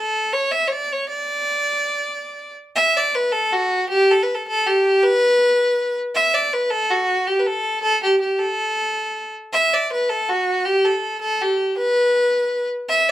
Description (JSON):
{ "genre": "celtic folk", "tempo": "106 BPM (dotted quarters)", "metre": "9/8", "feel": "straight", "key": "D major", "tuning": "A4 = 436 Hz", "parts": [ { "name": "rich fiddle", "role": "solo", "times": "0.0-13.1 s", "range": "F#4 to E5", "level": "-17 LUFS", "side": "equal", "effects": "none" } ], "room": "wet small room reverb, RT60 0.5 s", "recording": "heard from further back in the room", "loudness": "-17 LUFS", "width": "side -13 dB against mid", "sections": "0.0-2.8 A section; 2.8-13.1 B section", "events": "none", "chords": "none", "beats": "0.50 | 1.06 1.63 2.19 | 2.76 3.32 3.89 | 4.45 5.01 5.58 | 6.14 6.71 7.27 | 7.83 8.40 8.96 | 9.52 10.09 10.65 | 11.21 11.77 12.33 | 12.89" }